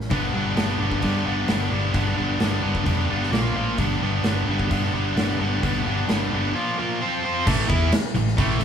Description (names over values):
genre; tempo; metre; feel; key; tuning
blues rock power trio and southern rock; 130 BPM; 4/4; straight; unclear; A4 = 440 Hz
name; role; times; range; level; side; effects
hollow-body short-scale fingered electric bass; bass; 0.0-8.6 s; F1 to G2; -26 LUFS; equal; none
big rock drum kit; drums; 0.0-8.6 s; crash cymbal, hi-hat, kick drum, snare drum; -26 LUFS; equal; none
sludgy distorted guitar; riff; 0.1-8.6 s; G2 to C5; -23 LUFS; equal; overdrive
room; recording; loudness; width
moderate studio reverb, RT60 0.6 s; band playing live in one room; -20 LUFS; side -8 dB against mid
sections
0.0-7.5 A section; 7.5-8.6 B section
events
none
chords
0.1 G; 3.3 Bb5; 3.8 G; 6.5 Bb5; 7.0 F5; 7.5 A5